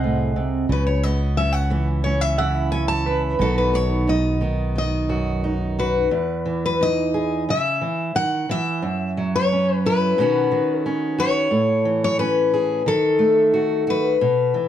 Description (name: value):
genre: folk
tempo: 89 BPM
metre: 4/4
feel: straight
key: E major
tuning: A4 = 442 Hz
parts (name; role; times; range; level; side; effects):
- picked steel-string acoustic guitar; melody; 0.0-14.7 s; A4 to A5; -21 LUFS; left 3 dB; none
- fingerpicked steel-string acoustic guitar; accompaniment; 0.0-14.7 s; E2 to G#4; -23 LUFS; right 3 dB; none
- electric guitar through a small old amp; arpeggios; 0.0-3.7 s; B4 to F#5; -26 LUFS; right 4 dB; tremolo
- sustaining fretless electric bass; bass; 0.0-6.1 s; B1 to C#2; -22 LUFS; equal; none
room: light reverb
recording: dark, warm production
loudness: -18 LUFS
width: side -10 dB against mid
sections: 0.0-6.1 A section; 6.1-14.7 B section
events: none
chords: 0.0 G#/B#; 0.7 C#m11; 3.4 B; 6.1 Emaj7; 7.5 C#m; 8.8 F#5; 10.2 Badd9; 11.5 Amaj7; 12.9 D#dim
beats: 0.02 | 0.70 1.37 2.05 2.73 | 3.40 4.08 4.76 5.44 | 6.12 6.79 7.47 8.14 | 8.82 9.49 10.16 10.83 | 11.51 12.18 12.85 13.52 | 14.20